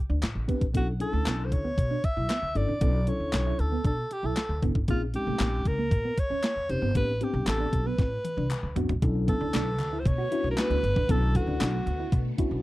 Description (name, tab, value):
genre	early-eighties boogie funk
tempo	116 BPM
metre	4/4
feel	straight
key	unclear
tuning	A4 = 440 Hz
part	mellow electric guitar	riff	0.1-12.5 s	A3 to F#4	-34 LUFS	right 4 dB	wide subtle chorus
part	upright bass	bass	0.1-12.6 s	E#1 to B2	-29 LUFS	equal	none
part	clean 12-bit digital drum machine	drums	0.2-12.5 s	handclaps, hi-hat, kick drum, snare drum, toms	-28 LUFS	equal	overdrive
part	group handclap	percussion	0.2-11.7 s	none	-41 LUFS	left 5 dB	none
part	mellow tine electric piano	accompaniment	0.5-12.6 s	G#3 to B4	-33 LUFS	left 4 dB	medium stereo tremolo
part	breathy alto saxophone	melody	0.8-12.4 s	E#4 to E5	-31 LUFS	equal	slapback echo
part	phased string machine	sustained chords	9.2-12.6 s	D3 to B3	-38 LUFS	left 1 dB	ensemble chorus, phaser
room	little or no reverb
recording	dry, close 1970s-style studio recording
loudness	-25 LUFS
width	side -17 dB against mid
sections	0.0-9.0 A section; 9.0-12.6 B section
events	drum fill 8.0-9.0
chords	0.0 Am11; 0.7 Bm11; 4.9 A#m11; 7.0 Am11; 9.0 Bm11